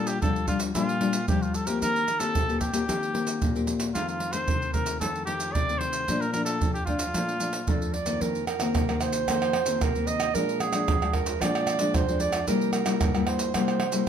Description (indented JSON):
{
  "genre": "samba and choro",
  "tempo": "113 BPM",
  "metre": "4/4",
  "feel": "straight",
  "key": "Bb major",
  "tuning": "A4 = 440 Hz",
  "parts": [
    { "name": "warm trumpet", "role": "melody", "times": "0.0-7.9 s", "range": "F4 to D5", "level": "-29 LUFS", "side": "equal", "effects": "none" },
    { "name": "nylon-string guitar", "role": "accompaniment", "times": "0.0-14.1 s", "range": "F2 to G4", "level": "-28 LUFS", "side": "left 4 dB", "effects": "none" },
    { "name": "maracas, pandeiro, surdo and tamborim", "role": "percussion", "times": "0.1-14.1 s", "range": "none", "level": "-28 LUFS", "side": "right 2 dB", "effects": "none" },
    { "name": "warm clarinet", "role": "second line", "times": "7.7-14.1 s", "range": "Ab4 to Eb5", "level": "-28 LUFS", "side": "right 9 dB", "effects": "none" }
  ],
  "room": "moderate large studio reverb, RT60 0.8 s",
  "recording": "minimal, uncompressed stereo recording",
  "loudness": "-24 LUFS",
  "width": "side -8 dB against mid",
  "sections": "0.0-8.2 A section; 8.2-14.1 B section",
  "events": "clarinet solo 8.2-14.1",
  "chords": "0.0 Bb6; 1.8 Eb6; 4.0 F7; 6.1 Bbmaj7; 8.2 F7sus4; 10.3 Bb7; 12.5 C7"
}